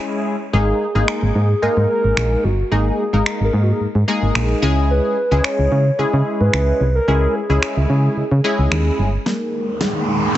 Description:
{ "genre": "dance-pop", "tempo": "110 BPM", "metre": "4/4", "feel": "straight", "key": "G# minor", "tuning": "A4 = 439 Hz", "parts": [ { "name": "hollow clarinet-like synth lead", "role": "melody", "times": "0.0-10.4 s", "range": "F#4 to C#5", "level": "-22 LUFS", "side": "equal", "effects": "chorus, low-pass filter, tape echo" }, { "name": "funky polysynth comp", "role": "accompaniment", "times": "0.0-10.4 s", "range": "G#3 to A#4", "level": "-21 LUFS", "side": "left 2 dB", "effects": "chorus, low-pass filter" }, { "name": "solid FM bass", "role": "bass", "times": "0.5-9.2 s", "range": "G1 to C#3", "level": "-16 LUFS", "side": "equal", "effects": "none" }, { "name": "electronic finger snaps and snare drum", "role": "drums", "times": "1.1-10.4 s", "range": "none", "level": "-24 LUFS", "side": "equal", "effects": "none" }, { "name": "granular cloud pad", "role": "sustained chords", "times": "9.8-10.4 s", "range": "D#3 to G#4", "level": "-24 LUFS", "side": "right 2 dB", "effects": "built-in reverb, low-pass filter" }, { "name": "riser", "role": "sound effects", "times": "9.6-10.4 s", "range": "none", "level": "-23 LUFS", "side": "right 1 dB", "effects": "none" } ], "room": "light reverb", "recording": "heavily compressed radio sound, nothing above 8.0 kHz", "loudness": "-15 LUFS", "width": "side -13 dB against mid", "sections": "0.0-9.3 A section; 9.3-10.4 B section", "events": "build-up 9.3-10.4; drum fill 9.3-10.4; filter sweep 9.3-10.4; riser 9.6-10.4", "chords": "0.0 C#m; 0.5 G#sus2; 4.6 C#m; 9.3 G#sus2" }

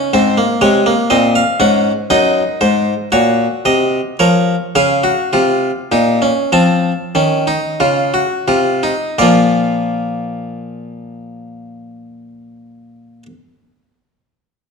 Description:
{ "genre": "classical, baroque-style 3-part fugue for harpsichord", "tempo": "42-63 BPM", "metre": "4/4", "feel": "straight", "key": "unclear", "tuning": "A4 = 440 Hz", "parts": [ { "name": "harpsichord", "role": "solo", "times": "0.0-13.3 s", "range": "Gb2 to A5", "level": "-12 LUFS", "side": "equal", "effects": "none" } ], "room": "wet recital hall reverb, RT60 1.4 s", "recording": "dark, warm production", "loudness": "-12 LUFS", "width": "side -5 dB against mid", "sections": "0.0-9.2 A section; 9.2-14.7 B section", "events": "slowing down 0.0-9.2", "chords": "0.1 Fm/Ab; 2.1 Ebm/Gb; 4.2 Bbm; 6.5 F7; 9.2 Bb" }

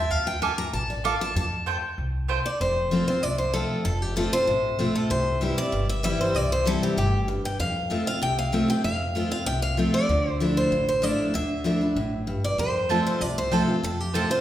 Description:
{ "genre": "bluegrass", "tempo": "192 BPM", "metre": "4/4", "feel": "straight", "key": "F major", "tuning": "A4 = 439 Hz", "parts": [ { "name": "picked steel-string acoustic guitar", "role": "accompaniment", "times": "0.0-14.4 s", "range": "F2 to Bb5", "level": "-26 LUFS", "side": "left 1 dB", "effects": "none" }, { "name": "upright bass", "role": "bass", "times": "0.0-14.2 s", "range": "F1 to F2", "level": "-29 LUFS", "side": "equal", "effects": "none" }, { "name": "mandolin", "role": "stabs", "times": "0.4-2.4, 12.9-14.2 s", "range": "A3 to D6", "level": "-29 LUFS", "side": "right 5 dB", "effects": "none" }, { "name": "picked steel-string acoustic guitar", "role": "melody", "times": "2.5-14.4 s", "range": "G4 to G5", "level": "-26 LUFS", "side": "equal", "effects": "none" } ], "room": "wet recital hall reverb, RT60 1.4 s", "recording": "recorded in a church or concert hall", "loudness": "-22 LUFS", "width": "side -12 dB against mid", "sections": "0.0-2.6 A section; 2.6-14.4 B section", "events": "steel-string acoustic guitar solo 0.0-2.6", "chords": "0.1 Dmadd9; 1.4 Fadd9; 2.6 F; 5.1 C; 7.6 F; 10.1 Dmadd9; 12.6 F" }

